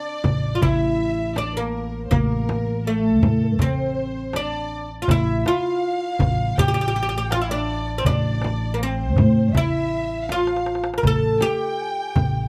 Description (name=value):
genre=Arabic maqam ensemble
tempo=81 BPM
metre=4/4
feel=straight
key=A maqam kurd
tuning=A4 = 444 Hz
part: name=oud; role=melody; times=0.0-12.5 s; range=A3 to Bb4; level=-26 LUFS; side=equal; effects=none
part: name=breathy mellow low ney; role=second line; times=0.0-12.5 s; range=A4 to A5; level=-33 LUFS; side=equal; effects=none
part: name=warm symphonic violin section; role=second line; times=0.0-12.5 s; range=A4 to A5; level=-36 LUFS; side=equal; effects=none
part: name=darbuka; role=percussion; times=0.2-12.4 s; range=none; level=-27 LUFS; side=equal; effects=none
part: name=frame drum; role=percussion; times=0.2-12.3 s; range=none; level=-28 LUFS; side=equal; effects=none
part: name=upright bass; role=bass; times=0.3-12.5 s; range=A1 to A2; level=-26 LUFS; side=equal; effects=none
room=little or no reverb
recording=close, detailed microphones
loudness=-22 LUFS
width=mono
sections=0.0-12.5 A section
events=drum fill 10.3-11.0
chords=none